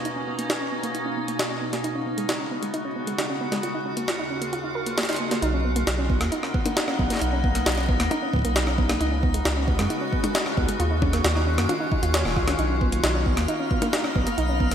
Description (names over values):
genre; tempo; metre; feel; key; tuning
IDM; 134 BPM; 4/4; straight; B lydian; A4 = 441 Hz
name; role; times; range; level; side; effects
icy glass pad; sustained chords; 0.0-14.7 s; D#2 to F#4; -28 LUFS; equal; chorus, built-in reverb
soft round pluck; arpeggios; 0.0-14.7 s; G#3 to C#5; -28 LUFS; right 1 dB; chorus, ping-pong delay
jungle sampler-style drum kit; drums; 0.1-14.7 s; hi-hat, rim click, snare drum, toms; -28 LUFS; left 1 dB; gated reverb, ping-pong delay
round analog bass; bass; 5.4-14.7 s; D#1 to F#2; -25 LUFS; equal; tube saturation
electronic kick drum; drums; 6.1-14.7 s; none; -26 LUFS; equal; none
twinkling granular texture; texture; 13.1-14.7 s; E#5; -34 LUFS; equal; built-in reverb
room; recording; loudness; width
moderate lush hall reverb, RT60 1.7 s; bright 1980s-style digital production; -22 LUFS; side -9 dB against mid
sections
0.0-5.4 A section; 5.4-14.7 B section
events
filter sweep on ambient pad 0.0-5.4; filter sweep on synth arpeggio sound 0.0-5.4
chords
0.0 Bmaj9; 1.8 C#9sus4; 3.6 D#m9; 5.4 Bmaj9; 9.0 C#9sus4; 10.8 D#m9; 12.6 Bmaj9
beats
| 0.05 0.50 0.95 1.39 | 1.84 2.29 2.74 3.19 | 3.63 4.08 4.53 4.98 | 5.42 5.87 6.32 6.77 | 7.21 7.66 8.11 8.56 | 9.01 9.45 9.90 10.35 | 10.80 11.24 11.69 12.14 | 12.59 13.04 13.48 13.93 | 14.38